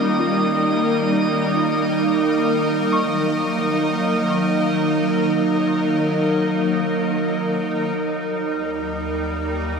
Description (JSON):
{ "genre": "ambient", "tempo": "free time", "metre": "none", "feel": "none", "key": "unclear", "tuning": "A4 = 435 Hz", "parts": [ { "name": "evolving wavetable pad", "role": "sustained chords", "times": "0.0-9.8 s", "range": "Gb3 to Eb5", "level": "-19 LUFS", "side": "right 1 dB", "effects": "ensemble chorus, built-in reverb" }, { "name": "soft round pluck", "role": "arpeggios", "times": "0.0-8.8 s", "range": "Db4 to F6", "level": "-32 LUFS", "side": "left 2 dB", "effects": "none" }, { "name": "organ-like drone", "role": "drone", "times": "0.0-9.8 s", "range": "Eb3 to Bb3", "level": "-26 LUFS", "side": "equal", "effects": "ensemble chorus, built-in reverb" }, { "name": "drifting glass-harmonics texture", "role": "texture", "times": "0.0-8.0 s", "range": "Eb6", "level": "-29 LUFS", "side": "equal", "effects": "chorus, built-in reverb" }, { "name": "deep rumbling drone", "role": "bass", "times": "8.0-9.8 s", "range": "Eb2", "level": "-30 LUFS", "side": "left 1 dB", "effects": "built-in reverb" } ], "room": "wet huge ambient reverb, RT60 7.0 s", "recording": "none", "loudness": "-18 LUFS", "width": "side -5 dB against mid", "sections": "0.0-8.0 A section; 8.0-9.8 B section", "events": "none", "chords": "0.0 Eb; 2.5 Ebm9; 8.0 Eb" }